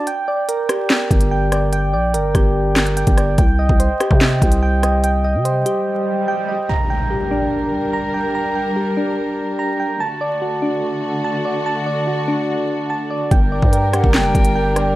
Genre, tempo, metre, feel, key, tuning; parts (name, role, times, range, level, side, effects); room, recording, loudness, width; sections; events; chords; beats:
hip hop, drill; 145 BPM; 4/4; half-time; G harmonic minor; A4 = 440 Hz
soft electric-piano-like synth keys; arpeggios; 0.0-15.0 s; D4 to Bb5; -20 LUFS; right 1 dB; chorus, slapback echo
drill drum kit; drums; 0.1-5.8, 13.3-14.9 s; handclaps, hi-hat, kick drum, rim click, snare drum; -16 LUFS; equal
growling 808-style bass; bass; 1.1-5.6, 13.3-15.0 s; F#1 to C3; -18 LUFS; equal
swell and impact; sound effects; 5.5-8.3 s; -25 LUFS; equal
dark studio string section; sustained chords; 6.7-15.0 s; D3 to Bb4; -24 LUFS; left 1 dB
breathy mellow silver concert flute; second line; 13.7-14.9 s; F#5 to G5; -22 LUFS; left 1 dB; slapback echo
light reverb; vinyl crackle; -15 LUFS; side -16 dB against mid
0.0-6.7 A section; 6.7-15.0 B section
break 0.1-0.9, 5.9-6.7; swell 5.5-6.7; impact 6.7-8.3
0.1 Gm; 3.4 Cm; 6.7 Gm; 10.0 D; 13.3 Gm
| 0.07 0.49 0.90 1.31 | 1.73 2.14 2.56 2.97 | 3.38 3.80 4.21 4.62 | 5.04 5.45 5.87 6.28 | 6.69 7.11 7.52 7.93 | 8.35 8.76 9.18 9.59 | 10.00 10.42 10.83 11.24 | 11.66 12.07 12.49 12.90 | 13.31 13.73 14.14 14.55